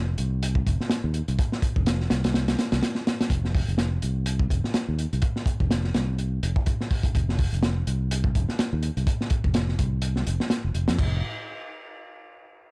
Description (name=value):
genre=breakbeat, breaks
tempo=125 BPM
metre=4/4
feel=swing 57% on 16ths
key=unclear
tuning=A4 = 439 Hz
part: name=fingered electric bass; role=bass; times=0.0-11.2 s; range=F1 to F2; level=-25 LUFS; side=equal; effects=tube saturation
part: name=crunchy breakbeat drum kit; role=drums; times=0.2-11.1 s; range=crash cymbal, hi-hat, kick drum, snare drum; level=-24 LUFS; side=equal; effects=none
room=little or no reverb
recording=dry, gritty hardware recording, cassette tape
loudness=-22 LUFS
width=side -33 dB against mid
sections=0.0-3.3 A section; 3.3-11.0 B section; 11.0-12.7 C section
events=none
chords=none